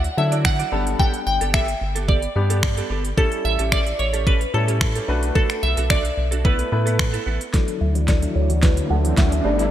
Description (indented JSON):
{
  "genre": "dance-pop",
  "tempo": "110 BPM",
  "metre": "4/4",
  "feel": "straight",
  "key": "D major",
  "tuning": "A4 = 442 Hz",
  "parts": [
    { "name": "glassy wavetable pluck", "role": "melody", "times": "0.0-9.7 s", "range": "A4 to G5", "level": "-25 LUFS", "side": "equal", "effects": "chorus, low-pass filter" },
    { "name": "direct-recorded clean electric guitar", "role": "riff", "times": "0.0-9.6 s", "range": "B3 to D5", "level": "-31 LUFS", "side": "right 7 dB", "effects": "ensemble chorus, low-pass filter" },
    { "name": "round analog bass", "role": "bass", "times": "0.0-9.7 s", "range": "G1 to D3", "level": "-22 LUFS", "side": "equal", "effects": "sidechain pumping" },
    { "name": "pop drum kit", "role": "drums", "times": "0.0-9.7 s", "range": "finger snaps, hi-hat, kick drum, snare drum", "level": "-21 LUFS", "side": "equal", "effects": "none" },
    { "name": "clear baby grand piano", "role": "accompaniment", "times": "0.2-9.7 s", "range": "F#3 to B4", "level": "-28 LUFS", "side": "left 3 dB", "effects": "sidechain pumping, low-pass filter" },
    { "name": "supersaw chords", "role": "sustained chords", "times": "7.5-9.7 s", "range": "D3 to B4", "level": "-30 LUFS", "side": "right 1 dB", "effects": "sidechain pumping, low-pass filter" },
    { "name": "thumb-piano-like synth pluck", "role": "arpeggios", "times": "7.5-9.7 s", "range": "E3 to E4", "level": "-30 LUFS", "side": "left 1 dB", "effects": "chorus, sidechain pumping, low-pass filter" },
    { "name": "riser", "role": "sound effects", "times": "8.4-9.7 s", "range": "none", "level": "-29 LUFS", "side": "equal", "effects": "none" }
  ],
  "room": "moderate lush hall reverb, RT60 2.7 s",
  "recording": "bright 1980s-style digital production",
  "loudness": "-18 LUFS",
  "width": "side -11 dB against mid",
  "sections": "0.0-7.5 A section; 7.5-9.7 B section",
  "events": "build-up 7.5-9.7; drum fill 7.5-9.7; filter sweep 7.5-9.7; riser 8.4-9.7",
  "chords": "0.0 Dadd9; 0.7 Gadd9; 3.2 A7; 5.1 Bm7; 6.4 Asus2; 7.5 Dadd9",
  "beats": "0.45 | 0.99 1.54 2.08 2.63 | 3.18 3.72 4.27 4.81 | 5.36 5.90 6.45 6.99 | 7.54 8.09 8.63 9.18"
}